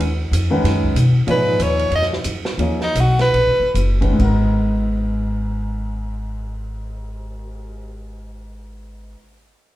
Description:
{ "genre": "modal jazz", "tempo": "132-189 BPM", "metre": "4/4", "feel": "swing 61% on 8ths", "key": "G# dorian", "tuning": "A4 = 445 Hz", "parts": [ { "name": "upright bass", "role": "bass", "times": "0.0-9.1 s", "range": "F#1 to B2", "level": "-20 LUFS", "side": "equal", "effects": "none" }, { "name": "open jazz drum kit", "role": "drums", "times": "0.0-7.7 s", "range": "crash cymbal, cymbal swell, hi-hat, kick drum, ride cymbal, snare drum", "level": "-28 LUFS", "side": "right 2 dB", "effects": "none" }, { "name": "warm concert grand piano", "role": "accompaniment", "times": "0.5-9.2 s", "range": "G#2 to C#5", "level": "-22 LUFS", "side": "left 1 dB", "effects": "none" }, { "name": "edgy soprano saxophone", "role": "melody", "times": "1.3-3.7 s", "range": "D#4 to D#5", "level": "-18 LUFS", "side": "equal", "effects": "none" } ], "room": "wet club reverb, RT60 0.8 s", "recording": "heard from further back in the room", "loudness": "-16 LUFS", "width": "side -15 dB against mid", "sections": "0.0-4.2 A section; 4.2-7.8 B section", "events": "soprano saxophone solo 0.0-4.2; slowing down 1.3-4.2", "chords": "0.0 G#m9", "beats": "| 0.00 0.32 0.63 0.95 | 1.27 1.59 1.91 2.25 | 2.60 2.96 3.34 3.75 | 4.18 4.64 5.09 5.55 | 6.00 6.46 6.92 7.37" }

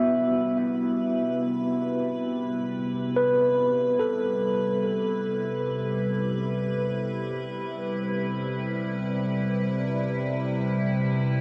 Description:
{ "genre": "ambient", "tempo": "free time", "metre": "none", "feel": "none", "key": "C lydian", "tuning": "A4 = 439 Hz", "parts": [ { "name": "evolving wavetable pad", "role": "sustained chords", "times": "0.0-11.4 s", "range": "C3 to B4", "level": "-32 LUFS", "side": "equal", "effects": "chorus, built-in reverb, phaser" }, { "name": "tine electric piano", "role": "arpeggios", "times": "0.0-11.4 s", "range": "B3 to E5", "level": "-28 LUFS", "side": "equal", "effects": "medium tremolo, tape echo" }, { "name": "overtone-sweeping drone", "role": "drone", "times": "0.5-11.4 s", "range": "C3 to G3", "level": "-35 LUFS", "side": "equal", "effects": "chorus, built-in reverb" } ], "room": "wet huge ambient reverb, RT60 8.1 s", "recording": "dark, warm production, lossy compression artefacts", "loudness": "-26 LUFS", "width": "mono", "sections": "0.0-11.4 A section", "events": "fade-in on ambient pad 0.0-11.4; fade-in on synth drone 0.0-11.4", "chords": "0.0 Cmaj7", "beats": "free time" }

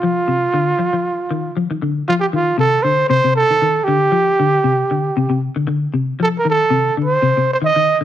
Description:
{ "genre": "afrobeat", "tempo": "117 BPM", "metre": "4/4", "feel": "straight", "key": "unclear", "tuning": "A4 = 440 Hz", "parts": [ { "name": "breathy trumpet", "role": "melody", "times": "0.0-8.0 s", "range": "F4 to Eb5", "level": "-15 LUFS", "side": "right 3 dB", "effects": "none" }, { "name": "clean electric guitar", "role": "arpeggios", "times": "0.0-8.0 s", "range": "C3 to F3", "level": "-19 LUFS", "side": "left 4 dB", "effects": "lush chorus" } ], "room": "moderate large studio reverb, RT60 1.2 s, studio ambience", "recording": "none", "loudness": "-14 LUFS", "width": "side -11 dB against mid", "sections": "0.0-2.1 A section; 2.1-8.0 B section", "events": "none", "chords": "0.0 Cmadd11; 4.1 G5; 6.2 F7", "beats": "| 0.03 0.54 1.06 1.57 | 2.08 2.60 3.11 3.62 | 4.14 4.65 5.17 5.68 | 6.19 6.71 7.22 7.74" }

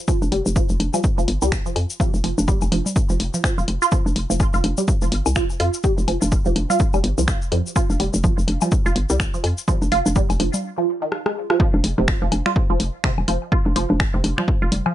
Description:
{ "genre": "minimal techno", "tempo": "125 BPM", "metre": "4/4", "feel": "swing 59% on 16ths", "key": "unclear", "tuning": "A4 = 440 Hz", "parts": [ { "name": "resonant blip pluck", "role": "riff", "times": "0.1-14.9 s", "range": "C3 to F4", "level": "-24 LUFS", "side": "right 2 dB", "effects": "phaser, sidechain pumping, dub echo" }, { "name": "electronic kick drum", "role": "drums", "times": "0.1-14.6 s", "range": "none", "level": "-20 LUFS", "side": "equal", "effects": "none" }, { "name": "tube shaker", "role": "percussion", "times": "0.1-10.6 s", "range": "none", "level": "-30 LUFS", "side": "left 5 dB", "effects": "none" }, { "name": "woodblock and congas", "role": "percussion", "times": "0.1-14.9 s", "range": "none", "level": "-27 LUFS", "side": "left 2 dB", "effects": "digital delay" }, { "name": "hollow knocking FM bass", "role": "bass", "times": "0.2-14.8 s", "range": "Eb1 to F2", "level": "-21 LUFS", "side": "equal", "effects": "sidechain pumping" }, { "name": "punchy analog drum machine", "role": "drums", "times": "0.3-14.8 s", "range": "finger snaps, hi-hat, rim click", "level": "-25 LUFS", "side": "left 1 dB", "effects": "none" } ], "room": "little or no reverb", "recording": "nothing above 11.0 kHz", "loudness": "-18 LUFS", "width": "side -13 dB against mid", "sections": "0.0-11.6 A section; 11.6-14.9 B section", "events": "break 10.6-11.6; drum fill 11.1-11.6; drop 11.6-14.9", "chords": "none", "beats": "| 0.08 0.56 1.04 1.52 | 2.00 2.48 2.96 3.44 | 3.92 4.40 4.88 5.36 | 5.84 6.32 6.80 7.28 | 7.76 8.24 8.72 9.20 | 9.68 10.16 10.64 11.12 | 11.60 12.08 12.56 13.04 | 13.52 14.00 14.48" }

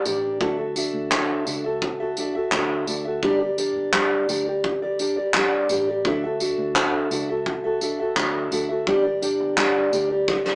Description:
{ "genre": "acoustic pop", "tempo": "85 BPM", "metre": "4/4", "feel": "straight", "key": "D major", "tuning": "A4 = 440 Hz", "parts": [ { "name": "fingerpicked steel-string acoustic guitar", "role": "accompaniment", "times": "0.0-10.6 s", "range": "G3 to E5", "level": "-22 LUFS", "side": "equal", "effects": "none" }, { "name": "vintage muted fingered electric bass", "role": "bass", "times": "0.1-10.6 s", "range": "G1 to D2", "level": "-38 LUFS", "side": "equal", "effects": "none" }, { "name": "soft brush drum kit", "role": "drums", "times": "0.1-10.6 s", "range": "handclaps, kick drum, snare drum, tambourine", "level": "-24 LUFS", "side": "equal", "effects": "none" } ], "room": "wet studio reverb, RT60 0.5 s", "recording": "rough rehearsal-room recording, small speaker sound", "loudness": "-20 LUFS", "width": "side -27 dB against mid", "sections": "0.4-10.6 A section", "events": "drum fill 10.3", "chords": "0.4 Dadd9; 3.2 Gm; 6.0 Dadd9; 8.9 Gm", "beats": "| 0.40 1.11 1.81 2.52 | 3.23 3.93 4.64 5.34 | 6.05 6.75 7.46 8.16 | 8.87 9.57 10.28" }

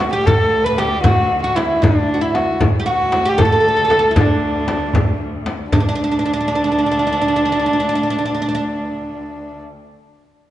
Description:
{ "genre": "Persian modal ensemble", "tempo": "77 BPM (dotted quarters)", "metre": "6/8", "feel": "straight", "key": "D dastgah mahur", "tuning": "A4 = 440 Hz", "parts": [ { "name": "dark kamancheh", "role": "melody", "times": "0.0-9.6 s", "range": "D4 to B4", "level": "-18 LUFS", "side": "equal", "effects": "tape echo" }, { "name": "oud", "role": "second line", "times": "0.0-8.6 s", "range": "D4 to B4", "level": "-22 LUFS", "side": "right 2 dB", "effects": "none" }, { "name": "bright studio cello section", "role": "drone", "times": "0.0-9.7 s", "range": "D2", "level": "-26 LUFS", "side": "left 1 dB", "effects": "none" }, { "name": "frame drum", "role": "percussion", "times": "0.0-6.0 s", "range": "none", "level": "-20 LUFS", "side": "left 2 dB", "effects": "none" }, { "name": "tombak", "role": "percussion", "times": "0.0-6.0 s", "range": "none", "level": "-21 LUFS", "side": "right 2 dB", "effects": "none" } ], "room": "wet recital hall reverb, RT60 1.4 s", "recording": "nothing above 10.6 kHz", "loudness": "-14 LUFS", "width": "side -13 dB against mid", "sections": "0.0-5.7 A section; 5.7-8.8 B section", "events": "none", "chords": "none", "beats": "0.28 | 1.05 1.83 | 2.61 3.39 | 4.17 4.94 | 5.72 6.50 | 7.28 8.06" }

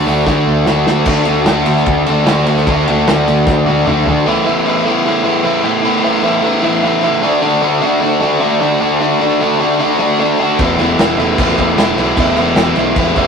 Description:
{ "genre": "indie rock", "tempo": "152 BPM", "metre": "4/4", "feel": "straight", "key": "unclear", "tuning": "A4 = 444 Hz", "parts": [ { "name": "overdriven electric guitar", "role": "riff", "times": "0.0-13.3 s", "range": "E2 to F#4", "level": "-12 LUFS", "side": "equal", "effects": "none" }, { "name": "modern bright picked electric bass", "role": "bass", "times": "0.0-4.2, 10.6-13.3 s", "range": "E1 to D3", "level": "-18 LUFS", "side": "equal", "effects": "none" }, { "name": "loose indie drum kit", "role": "drums", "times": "0.1-4.2, 10.6-13.3 s", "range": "crash cymbal, hi-hat, kick drum, ride cymbal, snare drum, toms", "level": "-17 LUFS", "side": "equal", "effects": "none" } ], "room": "wet studio reverb, RT60 0.6 s", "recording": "rough rehearsal-room recording, tube saturation", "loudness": "-11 LUFS", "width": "side -6 dB against mid", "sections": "0.0-1.1 A section; 1.1-4.3 B section; 4.3-13.3 C section", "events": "drum fill 0.3-1.1, 3.5-4.3", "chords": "0.0 D; 4.3 Esus4; 7.2 D; 10.6 Esus4", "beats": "0.27 0.67 | 1.07 1.47 1.87 2.27 | 2.67 3.06 3.46 3.86 | 4.26 4.66 5.05 5.45 | 5.85 6.24 6.64 7.03 | 7.43 7.83 8.22 8.62 | 9.01 9.41 9.80 10.20 | 10.59 10.99 11.38 11.78 | 12.17 12.57 12.96" }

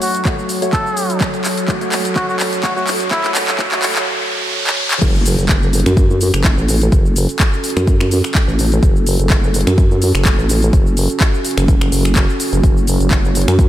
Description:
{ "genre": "bass house", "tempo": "126 BPM", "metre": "4/4", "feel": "swing 55% on 16ths", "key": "F# minor", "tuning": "A4 = 440 Hz", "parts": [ { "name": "trumpet with cup mute", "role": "melody", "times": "0.0-3.3 s", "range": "E4 to A4", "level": "-23 LUFS", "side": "equal", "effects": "diffuse ambient delay" }, { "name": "dark analog pad", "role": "sustained chords", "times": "0.0-13.7 s", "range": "F#3 to C#5", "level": "-22 LUFS", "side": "right 2 dB", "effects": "chorus, sidechain pumping" }, { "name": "percussive organ stab", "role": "stabs", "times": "0.0-3.9 s", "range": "A3 to C#5", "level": "-26 LUFS", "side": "left 1 dB", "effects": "chorus, sidechain pumping, diffuse ambient delay" }, { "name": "house drum kit", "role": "drums", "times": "0.0-13.7 s", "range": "crash cymbal, finger snaps, handclaps, hi-hat, shaker", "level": "-20 LUFS", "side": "equal", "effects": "overdrive, studio reverb" }, { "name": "riser and impact", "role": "sound effects", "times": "0.4-6.9 s", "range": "none", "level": "-24 LUFS", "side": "equal", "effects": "none" }, { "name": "deep dark ambient pad", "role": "texture", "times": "0.0-4.1 s", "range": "F#4 to A5", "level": "-32 LUFS", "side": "left 1 dB", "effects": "none" }, { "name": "electronic kick drum", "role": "drums", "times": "0.3-13.7 s", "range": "none", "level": "-14 LUFS", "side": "equal", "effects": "overdrive, studio reverb" }, { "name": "vowel-sweep wobble bass", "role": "bass", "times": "5.0-13.7 s", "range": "F#1 to F#2", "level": "-15 LUFS", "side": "equal", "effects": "chorus, tube saturation, sidechain pumping" } ], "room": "light reverb, digital ambience", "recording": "high-pass filter", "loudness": "-12 LUFS", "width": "side -13 dB against mid", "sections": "0.0-5.0 A section; 5.0-13.7 B section", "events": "build-up 0.0-5.0; drum fill 0.0-4.1, 4.7-5.0; filter sweep on synth stab 0.0-5.0; filter sweep 0.0-5.0; riser 0.4-5.0; drop 5.0-13.7; impact 5.0-6.9", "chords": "0.0 F#m", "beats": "0.26 0.73 | 1.21 1.68 2.16 2.64 | 3.11 3.59 4.07 4.54 | 5.02 5.49 5.97 6.45 | 6.92 7.40 7.87 8.35 | 8.83 9.30 9.78 10.26 | 10.73 11.21 11.68 12.16 | 12.64 13.11 13.59" }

